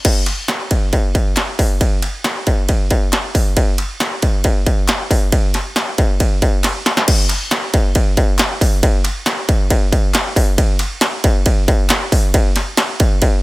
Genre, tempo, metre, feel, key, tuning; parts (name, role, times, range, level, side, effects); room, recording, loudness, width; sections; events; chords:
indie pop; 137 BPM; 4/4; straight
industrial drum kit; drums; 0.0-13.3 s; crash cymbal, hi-hat, kick drum, ride cymbal, snare drum; -14 LUFS; equal; distortion
group handclap; percussion; 0.3-12.9 s; -28 LUFS; left 2 dB
digital ambience; dense, heavily limited modern master; -14 LUFS; side -21 dB against mid
0.1-7.1 A section; 7.1-13.4 B section
drum fill 6.6-7.1